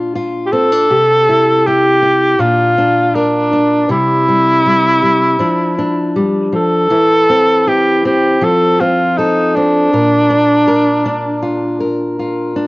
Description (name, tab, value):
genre	acoustic folk duo or small band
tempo	80 BPM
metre	4/4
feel	straight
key	C mixolydian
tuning	A4 = 442 Hz
part	fingerpicked steel-string acoustic guitar	accompaniment	0.0-12.7 s	Bb2 to Bb4	-16 LUFS	left 1 dB	cassette tape
part	warm tenor saxophone	melody	0.5-12.2 s	D4 to A4	-11 LUFS	equal	cassette tape
room	light reverb, small room ambience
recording	home recording on cassette, nothing above 8.0 kHz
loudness	-10 LUFS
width	side -22 dB against mid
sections	0.0-12.7 A section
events	none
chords	0.0 Bb; 0.9 C; 2.4 Bb; 3.9 C; 5.4 Fmaj13; 6.9 C/E; 8.4 F; 9.9 Bb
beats	0.15 | 0.90 1.65 2.40 3.15 | 3.90 4.66 5.41 6.16 | 6.91 7.66 8.41 9.17 | 9.92 10.67 11.43 12.18